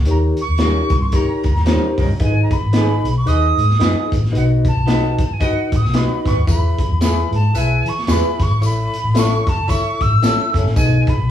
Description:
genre	uptempo 1960s-style soul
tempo	112 BPM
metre	4/4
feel	swing 58% on 8ths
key	unclear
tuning	A4 = 444 Hz
part	vintage muted fingered electric bass	bass	0.0-11.3 s	F#1 to E3	-18 LUFS	equal	none
part	breathy bright silver concert flute	melody	0.1-11.3 s	F#5 to E6	-22 LUFS	equal	none
part	barky reed electric piano	accompaniment	0.1-11.3 s	G#2 to E5	-22 LUFS	left 1 dB	overdrive, fast tremolo
part	crunchy breakbeat drum kit	drums	0.1-11.2 s	hi-hat, kick drum, snare drum	-20 LUFS	equal	none
part	electric guitar through a small old amp	stabs	0.6-10.6 s	G3 to B4	-24 LUFS	right 3 dB	none
part	clear horn section	second line	1.1-9.9 s	F#4 to E5	-28 LUFS	left 4 dB	none
part	tambourine	percussion	6.5-10.9 s	none	-34 LUFS	left 2 dB	none
room	moderate large studio reverb, RT60 0.9 s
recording	band playing live in one room, small room ambience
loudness	-14 LUFS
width	side -10 dB against mid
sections	0.0-11.3 A section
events	none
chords	0.1 D#7; 2.2 G#m; 6.5 E; 8.6 A; 10.8 G#m/B

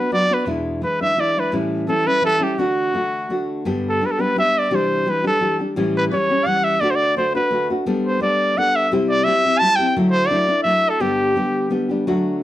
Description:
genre	mexican folk, mariachi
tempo	171 BPM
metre	3/4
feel	straight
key	D major, G major from 3.7 s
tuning	A4 = 440 Hz
part	clear trumpet	melody	0.0-11.7 s	F#4 to A5	-18 LUFS	equal	slapback echo
part	nylon-string guitar	accompaniment	0.0-12.4 s	E2 to A4	-21 LUFS	left 1 dB	none
room	light reverb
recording	dry, close 1970s-style studio recording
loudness	-16 LUFS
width	side -14 dB against mid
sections	0.0-3.7 A section; 3.7-12.1 B section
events	none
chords	0.5 E7; 1.5 A7; 2.6 D; 3.7 G; 4.7 Cadd9; 5.8 A7; 6.8 D; 7.9 Gadd9; 8.9 C; 10.0 Dadd9; 11.0 G

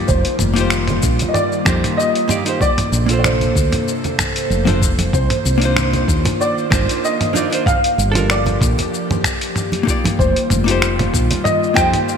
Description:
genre	sunset chillout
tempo	95 BPM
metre	4/4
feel	swing 54% on 16ths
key	unclear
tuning	A4 = 440 Hz
part	hollow-body jazz guitar	accompaniment	0.0-12.2 s	Bb3 to D5	-22 LUFS	moving between left 7 dB and right 7 dB	auto-pan, digital delay
part	airy breathy pad	sustained chords	0.0-12.2 s	C3 to C5	-23 LUFS	left 1 dB	chorus
part	dark baby grand piano	melody	0.1-12.2 s	C5 to G5	-21 LUFS	equal	ensemble chorus, digital delay
part	woody fretless electric bass	bass	0.1-11.9 s	F1 to F2	-18 LUFS	equal	tube saturation
part	dusty soul sampler-style drum kit	drums	0.1-12.2 s	finger snaps, hi-hat, shaker, toms	-21 LUFS	equal	studio reverb
part	electronic kick drum	drums	0.1-11.9 s	none	-20 LUFS	equal	studio reverb
part	congas	percussion	0.9-11.9 s	none	-26 LUFS	right 3 dB	none
room	moderate plate reverb, RT60 2.9 s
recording	bright 1980s-style digital production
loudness	-14 LUFS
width	side -7 dB against mid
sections	0.0-12.2 A section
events	none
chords	0.0 F9sus4; 2.6 Bbmaj9; 5.1 Cm11; 7.7 Gm9; 9.9 F9sus4

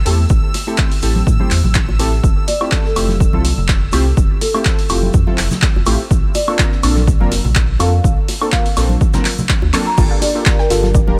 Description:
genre	deep house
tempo	124 BPM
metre	4/4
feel	swing 54% on 16ths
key	unclear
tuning	A4 = 443 Hz
part	sub bass with octave	bass	0.0-11.2 s	D1 to A2	-19 LUFS	equal	none
part	analog string pad	texture	0.0-10.0 s	E6	-36 LUFS	equal	ensemble chorus
part	warm analog keys	stabs	0.1-11.2 s	A3 to C5	-24 LUFS	equal	chorus, phaser, sidechain pumping, digital delay
part	punchy analog drum machine	drums	0.1-10.8 s	crash cymbal, handclaps, hi-hat, woodblock	-23 LUFS	equal	none
part	soft brush drum kit	drums	0.1-11.1 s	hi-hat, shaker, snare drum	-34 LUFS	equal	none
part	bongos and congas	percussion	0.1-11.2 s	none	-26 LUFS	equal	sidechain pumping on perc
part	electronic kick drum	drums	0.3-11.1 s	none	-18 LUFS	equal	none
part	marimba with medium mallets	melody	2.5-10.9 s	A4 to Bb5	-25 LUFS	equal	delay
part	soft round pluck	arpeggios	10.0-11.0 s	F4 to G5	-28 LUFS	equal	chorus, sidechain pumping, digital delay
room	small room ambience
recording	none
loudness	-15 LUFS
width	mono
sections	0.0-10.0 A section; 10.0-11.2 B section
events	drum fill 9.7; band accent 9.7; drop 10.0-11.2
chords	0.0 Am7; 2.2 Fmaj9; 6.1 Bbmaj9; 10.0 Gm9

